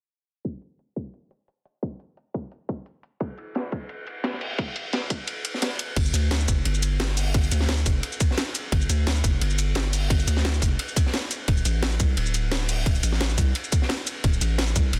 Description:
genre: liquid drum and bass.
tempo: 174 BPM.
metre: 4/4.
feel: straight.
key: unclear.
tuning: A4 = 441 Hz.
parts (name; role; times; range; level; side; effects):
electronic kick drum; drums; 0.4-14.8 s; none; -26 LUFS; equal; high-pass filter on kick, studio reverb.
garage drum kit; drums; 0.4-15.0 s; crash cymbal, hi-hat, shaker, snare drum; -31 LUFS; equal; studio reverb.
crunchy breakbeat drum kit; drums; 3.2-15.0 s; hi-hat, ride cymbal, snare drum; -33 LUFS; equal; high-pass filter on cymbals, studio reverb, high-pass filter on hats, high-pass filter on snare, high-pass filter on room.
long sustained 808-style bass; bass; 6.0-15.0 s; D1 to D2; -26 LUFS; equal; none.
room: small room ambience.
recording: dense, heavily limited modern master, low-pass filter.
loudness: -25 LUFS.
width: mono.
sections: 0.4-6.0 A section; 6.0-15.0 B section.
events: filter sweep 0.4-6.0; kick drops out 5.3-6.0; drop 6.0-15.0.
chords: none.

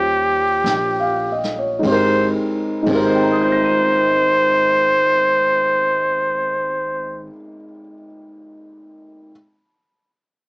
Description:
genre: jazz ballad.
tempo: 48 BPM.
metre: 4/4.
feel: swing 67% on 8ths.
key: Ab major.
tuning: A4 = 440 Hz.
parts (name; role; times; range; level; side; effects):
trumpet with plunger mute; melody; 0.0-7.3 s; G4 to C5; -16 LUFS; equal; cassette tape.
warm upright piano; accompaniment; 0.0-9.3 s; Ab2 to Eb7; -21 LUFS; equal; cassette tape.
upright bass; bass; 0.0-7.3 s; Ab1 to Eb2; -30 LUFS; equal; none.
jazz brush drum kit; drums; 0.7-3.1 s; hi-hat, kick drum, ride cymbal, snare drum; -32 LUFS; equal; none.
room: light reverb.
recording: home recording on cassette, small speaker sound.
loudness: -15 LUFS.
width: side -37 dB against mid.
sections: 0.0-1.8 A section; 1.8-6.8 B section.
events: slowing down 0.0-1.8.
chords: 0.0 Eb13; 1.8 Abmaj9.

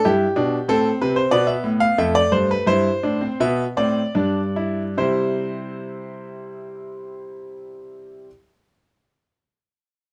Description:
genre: classical, baroque-style 3-part fugue for grand piano.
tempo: 70-98 BPM.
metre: 3/4.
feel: straight.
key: C major.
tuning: A4 = 440 Hz.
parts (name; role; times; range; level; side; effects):
clear grand piano; solo; 0.0-8.3 s; F2 to F5; -22 LUFS; equal; none.
room: moderate studio reverb, RT60 0.8 s.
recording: none.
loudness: -20 LUFS.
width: mono.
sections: 0.0-5.0 A section; 5.0-10.1 B section.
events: slowing down 0.0-5.0.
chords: 0.1 G; 0.7 Am; 2.0 Dm/F; 2.7 C/G; 4.1 G5; 5.0 C.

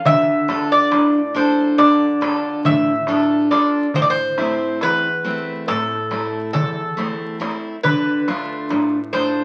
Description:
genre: greek folk, Greek bouzouki band.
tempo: 139 BPM (eighths).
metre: 9/8.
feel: straight.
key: D minor.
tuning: A4 = 440 Hz.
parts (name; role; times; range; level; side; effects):
Greek bouzouki; melody; 0.0-9.4 s; A4 to E5; -22 LUFS; equal; none.
picked steel-string acoustic guitar; accompaniment; 0.1-9.4 s; E2 to A4; -22 LUFS; equal; none.
darbuka; percussion; 0.1-9.4 s; none; -28 LUFS; equal; none.
room: wet studio reverb, RT60 0.6 s.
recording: very old 78 rpm record, vinyl crackle.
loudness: -19 LUFS.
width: mono.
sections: 0.0-3.9 A section; 3.9-9.4 B section.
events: none.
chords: 0.1 Dm; 3.9 Am; 7.8 Dm.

